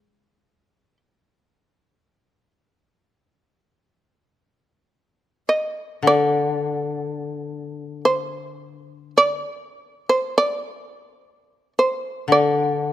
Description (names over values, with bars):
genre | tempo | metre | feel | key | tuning
japanese traditional, Japanese chamber music | free time | none | none | unclear | A4 = 440 Hz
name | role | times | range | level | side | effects
shamisen | melody | 0.0-1.0, 5.5-12.9 s | G4 to Eb5 | -19 LUFS | right 1 dB | none
koto | accompaniment | 6.0-12.9 s | D3 | -22 LUFS | left 3 dB | none
room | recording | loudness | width
light reverb | close, detailed microphones | -19 LUFS | side -12 dB against mid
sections
0.0-4.2 A section; 4.2-12.9 A section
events
none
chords
none